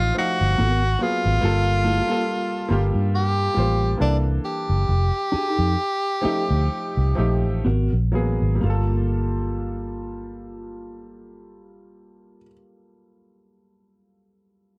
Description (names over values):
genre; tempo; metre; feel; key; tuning
R&B; 60-71 BPM; 4/4; swing 56% on 16ths; G minor; A4 = 444 Hz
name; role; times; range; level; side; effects
edgy tenor saxophone; melody; 0.0-7.6 s; D4 to G4; -26 LUFS; equal; none
clear concert grand piano; accompaniment; 0.0-14.8 s; E3 to F5; -30 LUFS; equal; none
vintage muted fingered electric bass; bass; 0.0-12.4 s; F1 to G2; -24 LUFS; equal; none
mellow electric guitar; second line; 0.6-12.5 s; Bb3 to Bb4; -31 LUFS; equal; none
room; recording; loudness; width
light reverb; dark, warm production; -22 LUFS; mono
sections
0.0-8.6 A section; 8.6-12.6 B section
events
slowing down 1.4-8.6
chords
0.0 F9; 0.6 Abm9; 1.4 Gm9; 4.0 C13; 4.9 F9; 7.6 Abm9; 8.6 Gm9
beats
0.57 | 1.42 2.27 3.12 3.99 | 4.87 5.77 6.69 7.64 | 8.61 9.61 10.60 11.60